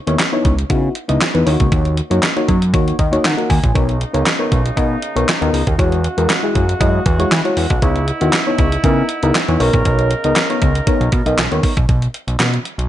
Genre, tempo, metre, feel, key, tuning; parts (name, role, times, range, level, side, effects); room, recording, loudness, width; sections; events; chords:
early-eighties boogie funk; 118 BPM; 4/4; straight; B major; A4 = 437 Hz
mellow FM electric piano; accompaniment; 0.1-11.7 s; G#3 to G#5; -19 LUFS; left 2 dB; chorus
fat analog bass; bass; 0.1-12.9 s; A#1 to E3; -17 LUFS; equal
crisp 8-bit digital drum machine; drums; 0.1-12.9 s; handclaps, hi-hat, kick drum, snare drum; -17 LUFS; equal
mellow brass ensemble; sustained chords; 3.8-11.9 s; C#3 to A#4; -24 LUFS; right 2 dB
light reverb; nothing above 10.6 kHz; -13 LUFS; side -12 dB against mid
0.0-11.9 A section
FM electric piano fill 2.7-3.8
0.0 C#m9; 1.5 D#m7; 3.8 Bmaj9; 5.8 E69; 7.8 C#m9; 9.6 Bmaj9; 11.9 N.C.